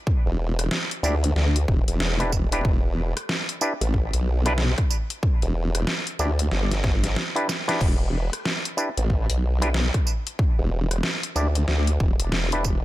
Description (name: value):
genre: glitch hop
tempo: 93 BPM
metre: 4/4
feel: swing 62% on 16ths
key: E minor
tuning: A4 = 440 Hz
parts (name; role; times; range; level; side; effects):
- electronic kick drum; drums; 0.1-12.8 s; none; -22 LUFS; equal; none
- formant-sweep wobble bass; bass; 0.3-12.8 s; E1 to D2; -22 LUFS; equal; chorus
- dubstep drum kit; drums; 0.6-12.8 s; crash cymbal, hi-hat, rim click, snare drum, tambourine; -27 LUFS; equal; none
- auto-wah clav; stabs; 1.0-12.6 s; D4 to D5; -29 LUFS; equal; sidechain pumping, dub echo
room: digital ambience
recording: none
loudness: -21 LUFS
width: side -16 dB against mid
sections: 0.0-12.8 A section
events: drum fill 6.5-7.8; kick drops out 7.2-7.8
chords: 0.0 Em7